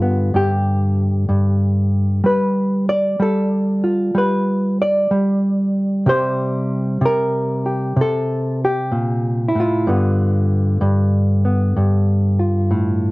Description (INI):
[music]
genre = solo jazz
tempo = 63 BPM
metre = 4/4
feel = swing 66% on 8ths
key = G mixolydian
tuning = A4 = 440 Hz
[part]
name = hollow-body jazz guitar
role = solo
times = 0.0-13.1 s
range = G2 to D5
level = -15 LUFS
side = equal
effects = none
[sound]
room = light reverb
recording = worn, warbling old tape, cassette tape, warbly pitch drift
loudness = -15 LUFS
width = side -21 dB against mid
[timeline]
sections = 0.0-13.1 A section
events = none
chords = 0.0 G7; 6.1 C5; 9.9 G7